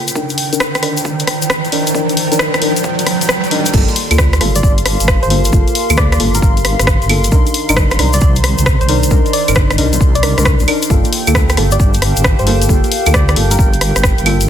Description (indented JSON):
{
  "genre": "UK garage, two-step garage",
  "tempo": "134 BPM",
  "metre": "4/4",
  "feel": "swing 66% on 16ths",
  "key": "G minor",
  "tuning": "A4 = 436 Hz",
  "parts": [
    { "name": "warm analog pad", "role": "sustained chords", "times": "0.0-14.5 s", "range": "G5 to C6", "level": "-26 LUFS", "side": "right 1 dB", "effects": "chorus, sidechain pumping" },
    { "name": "deep mellow chord stab", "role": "stabs", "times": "0.0-14.4 s", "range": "Bb3 to Bb4", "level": "-19 LUFS", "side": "left 1 dB", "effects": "chorus, ping-pong delay" },
    { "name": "riser", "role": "sound effects", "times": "0.0-3.7 s", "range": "none", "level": "-21 LUFS", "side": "right 3 dB", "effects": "none" },
    { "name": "warbly tape-like pad", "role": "texture", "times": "0.0-14.5 s", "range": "Eb3 to Bb5", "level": "-22 LUFS", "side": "right 1 dB", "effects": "chorus, built-in reverb, sidechain pumping" },
    { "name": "house drum kit", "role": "drums", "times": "0.1-14.5 s", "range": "claves, crash cymbal, hi-hat, rim click", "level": "-16 LUFS", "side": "equal", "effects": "studio reverb" },
    { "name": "egg shaker", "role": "percussion", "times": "0.1-14.5 s", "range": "none", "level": "-24 LUFS", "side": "left 5 dB", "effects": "none" },
    { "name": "electronic kick drum", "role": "drums", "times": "0.2-14.2 s", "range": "none", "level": "-14 LUFS", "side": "equal", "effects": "high-pass filter on kick, studio reverb" },
    { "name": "deep soft wobble bass", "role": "bass", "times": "3.7-14.5 s", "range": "G1 to D2", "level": "-14 LUFS", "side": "equal", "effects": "chorus" },
    { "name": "soft struck synth lead", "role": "melody", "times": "4.6-13.7 s", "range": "Bb4 to D5", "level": "-23 LUFS", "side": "equal", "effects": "chorus, phaser, ping-pong delay" }
  ],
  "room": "light reverb",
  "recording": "dense, heavily limited modern master",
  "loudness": "-10 LUFS",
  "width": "side -10 dB against mid",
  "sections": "0.0-3.7 A section; 3.7-14.5 B section",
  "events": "build-up 0.0-3.7; riser 0.0-3.7; filter sweep on synth stab 0.0-3.7; filter sweep on analog synth pad 0.0-3.7; drop 3.7-14.5",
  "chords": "0.2 Cm9; 3.7 Gm9; 7.3 Cm9; 10.9 Gm9",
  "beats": "| 0.15 0.60 1.05 1.50 | 1.95 2.39 2.84 3.29 | 3.74 4.18 4.63 5.08 | 5.53 5.97 6.42 6.87 | 7.32 7.77 8.21 8.66 | 9.11 9.56 10.01 10.45 | 10.90 11.35 11.80 12.24 | 12.69 13.14 13.59 14.04 | 14.48"
}